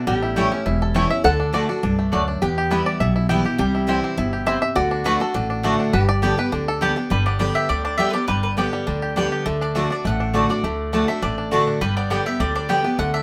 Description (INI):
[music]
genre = bluegrass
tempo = 204 BPM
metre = 4/4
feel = straight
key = G major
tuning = A4 = 439 Hz
[part]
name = bluegrass banjo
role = melody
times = 0.0-13.2 s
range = D3 to G5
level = -28 LUFS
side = equal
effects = none
[part]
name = lap resonator guitar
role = second line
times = 0.0-6.9 s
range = F#4 to A4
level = -29 LUFS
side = equal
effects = none
[part]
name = picked steel-string acoustic guitar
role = accompaniment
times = 0.0-13.2 s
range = E2 to G4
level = -26 LUFS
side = equal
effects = none
[part]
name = upright bass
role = bass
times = 0.1-13.2 s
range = E1 to E2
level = -27 LUFS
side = equal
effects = none
[part]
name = mandolin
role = stabs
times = 0.4-12.8 s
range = A3 to A5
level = -27 LUFS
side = equal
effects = none
[part]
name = mandolin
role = melody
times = 7.1-13.2 s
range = B4 to G5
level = -28 LUFS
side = equal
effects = none
[sound]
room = moderate studio reverb, RT60 0.7 s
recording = none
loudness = -21 LUFS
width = mono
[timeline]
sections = 0.0-7.1 A section; 7.1-13.2 B section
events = five-string banjo solo 0.0-7.1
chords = 0.1 A7; 1.2 D; 2.4 Em; 3.6 C; 4.8 D; 5.9 Gadd9; 7.1 G; 9.5 D; 11.8 G